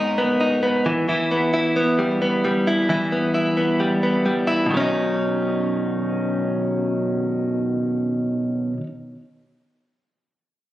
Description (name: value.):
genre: indie pop.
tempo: 132 BPM.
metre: 4/4.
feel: straight.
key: B major.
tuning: A4 = 440 Hz.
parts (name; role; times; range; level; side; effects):
direct-recorded clean electric guitar; solo; 0.0-8.9 s; G#2 to A#4; -19 LUFS; equal; digital delay.
room: light reverb.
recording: recorded on a phone in the room, club reverb, compression.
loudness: -19 LUFS.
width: side -14 dB against mid.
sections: 0.0-4.7 A section; 4.7-8.3 B section.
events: none.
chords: 0.0 G#madd9; 0.9 Em; 4.7 Badd9.